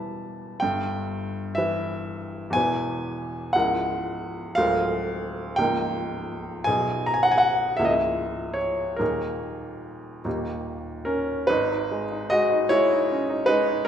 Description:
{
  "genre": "classical, romantic character piece for solo piano",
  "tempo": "46-64 BPM (dotted quarters)",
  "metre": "6/8",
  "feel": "rubato",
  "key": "G# minor",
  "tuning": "A4 = 440 Hz",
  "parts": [
    { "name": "clear baby grand piano", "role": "solo", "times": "0.0-13.9 s", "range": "B0 to B5", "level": "-23 LUFS", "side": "equal", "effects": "none" }
  ],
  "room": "moderate scoring stage reverb, RT60 1.7 s",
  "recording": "minimal, uncompressed stereo recording",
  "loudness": "-22 LUFS",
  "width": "side -9 dB against mid",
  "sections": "0.0-11.5 A section; 11.5-13.9 B section",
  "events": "none",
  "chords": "0.0 Em; 0.6 Em/G; 2.6 E; 3.5 A#m7b5/C#; 4.6 A#7/D; 5.6 D#7/C#; 6.7 G#m/B; 7.8 A#m7b5/C#; 9.0 D#sus4; 10.3 D#; 11.5 G#m"
}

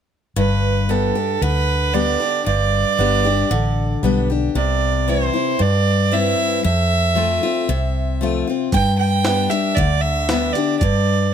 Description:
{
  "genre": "honky-tonk and classic country",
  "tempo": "115 BPM",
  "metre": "4/4",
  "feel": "straight",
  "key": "G mixolydian",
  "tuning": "A4 = 442 Hz",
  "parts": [
    { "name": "clear fiddle", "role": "second line", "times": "0.4-11.3 s", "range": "A4 to G5", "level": "-20 LUFS", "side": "right 6 dB", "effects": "none" },
    { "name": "picked steel-string acoustic guitar", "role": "accompaniment", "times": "0.4-11.3 s", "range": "F2 to G4", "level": "-21 LUFS", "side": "left 4 dB", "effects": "none" },
    { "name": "vintage muted fingered electric bass", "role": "bass", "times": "0.4-11.3 s", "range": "G1 to G2", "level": "-20 LUFS", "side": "equal", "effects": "none" },
    { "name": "jungle sampler-style drum kit", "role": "drums", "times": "8.7-10.9 s", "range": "hi-hat, kick drum, snare drum", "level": "-22 LUFS", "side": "equal", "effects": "overdrive" }
  ],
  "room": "light reverb",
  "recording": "close, detailed microphones",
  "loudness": "-16 LUFS",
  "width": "side -8 dB against mid",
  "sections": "0.4-11.3 A section",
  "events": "fiddle solo 0.4-11.3",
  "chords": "0.4 G; 4.6 C; 6.6 F; 8.7 G"
}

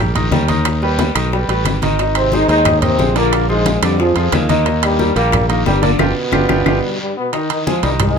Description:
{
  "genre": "latin, salsa",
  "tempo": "180 BPM",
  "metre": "4/4",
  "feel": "straight",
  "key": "unclear",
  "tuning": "A4 = 440 Hz",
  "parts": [
    { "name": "clear baby grand piano", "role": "accompaniment", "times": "0.0-8.2 s", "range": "D3 to Ab5", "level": "-19 LUFS", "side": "equal", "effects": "none" },
    { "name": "modern bright fingered electric bass", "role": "bass", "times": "0.0-8.2 s", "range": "G1 to F2", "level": "-18 LUFS", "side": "right 1 dB", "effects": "none" },
    { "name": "congas", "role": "percussion", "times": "0.2-8.2 s", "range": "none", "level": "-22 LUFS", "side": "left 2 dB", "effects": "none" },
    { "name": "timbales", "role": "percussion", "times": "0.2-8.2 s", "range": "none", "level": "-23 LUFS", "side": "right 13 dB", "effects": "none" },
    { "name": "bongos", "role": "percussion", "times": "0.3-8.2 s", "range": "none", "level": "-26 LUFS", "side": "left 8 dB", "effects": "none" },
    { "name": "guiro", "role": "percussion", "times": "0.3-8.2 s", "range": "none", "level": "-29 LUFS", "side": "left 1 dB", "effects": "none" },
    { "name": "claves", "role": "percussion", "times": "0.7-6.7 s", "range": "none", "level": "-26 LUFS", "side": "left 10 dB", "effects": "none" },
    { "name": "clear trombone section", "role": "melody", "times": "2.2-8.2 s", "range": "G2 to F4", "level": "-17 LUFS", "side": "equal", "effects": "none" }
  ],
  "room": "light reverb",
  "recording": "close, detailed microphones",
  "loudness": "-13 LUFS",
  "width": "side -6 dB against mid",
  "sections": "0.0-7.3 A section",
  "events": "drum fill 6.0-7.3; band accent 6.0-7.3",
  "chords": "0.0 Eb; 0.7 Ebaug; 2.0 Abadd9; 3.3 Bb7; 4.7 Ebmaj7; 6.0 G7; 7.3 Fm7"
}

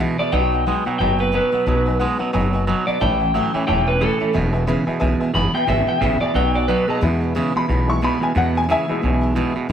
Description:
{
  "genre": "rockabilly",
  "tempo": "179 BPM",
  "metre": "4/4",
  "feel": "swing 59% on 8ths",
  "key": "E major",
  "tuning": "A4 = 440 Hz",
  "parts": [
    { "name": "clear upright piano", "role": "accompaniment", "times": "0.0-9.7 s", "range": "G#3 to C#6", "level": "-25 LUFS", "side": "left 2 dB", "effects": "none" },
    { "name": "picked steel-string acoustic guitar", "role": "accompaniment", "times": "0.0-9.7 s", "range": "E2 to A4", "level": "-27 LUFS", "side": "left 3 dB", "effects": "none" },
    { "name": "twangy electric guitar", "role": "riff", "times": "0.0-9.7 s", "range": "E2 to G#3", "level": "-22 LUFS", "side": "right 5 dB", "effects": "none" },
    { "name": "upright bass", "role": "bass", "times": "0.0-9.7 s", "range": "E1 to E2", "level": "-22 LUFS", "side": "equal", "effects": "none" },
    { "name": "electric guitar through a small old amp", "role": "melody", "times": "0.2-7.0 s", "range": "G#4 to B5", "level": "-21 LUFS", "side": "equal", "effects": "spring reverb, tape echo" }
  ],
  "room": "light reverb",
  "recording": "none",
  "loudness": "-17 LUFS",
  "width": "side -9 dB against mid",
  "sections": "0.0-7.0 A section; 7.0-9.7 B section",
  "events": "upright piano solo 7.0-9.7",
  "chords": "0.3 B; 3.0 E; 6.4 B; 7.0 E"
}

